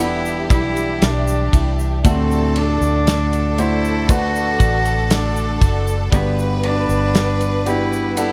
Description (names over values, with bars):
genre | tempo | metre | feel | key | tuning
pop ballad | 59 BPM | 4/4 | straight | unclear | A4 = 441 Hz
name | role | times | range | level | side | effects
warm cello | melody | 0.0-8.3 s | B3 to F#4 | -24 LUFS | equal | none
clear studio violin section | second line | 0.0-8.3 s | G4 to B4 | -30 LUFS | equal | none
warm baby grand piano | accompaniment | 0.0-8.3 s | G2 to F#5 | -27 LUFS | equal | none
ethereal airy pad | sustained chords | 0.1-8.3 s | G3 to D6 | -34 LUFS | equal | none
twelve-string electric guitar | arpeggios | 0.0-8.3 s | D3 to F#4 | -29 LUFS | equal | none
vintage muted fingered electric bass | bass | 0.0-8.3 s | E1 to D2 | -23 LUFS | equal | none
tube shaker | percussion | 0.3-8.3 s | none | -37 LUFS | equal | none
loose indie drum kit | drums | 0.5-8.3 s | kick drum, ride cymbal, snare drum | -20 LUFS | equal | none
room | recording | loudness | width
studio reverb | none | -18 LUFS | mono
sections
0.0-8.3 A section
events
none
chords
0.0 Em7; 2.0 D; 6.1 Gmaj7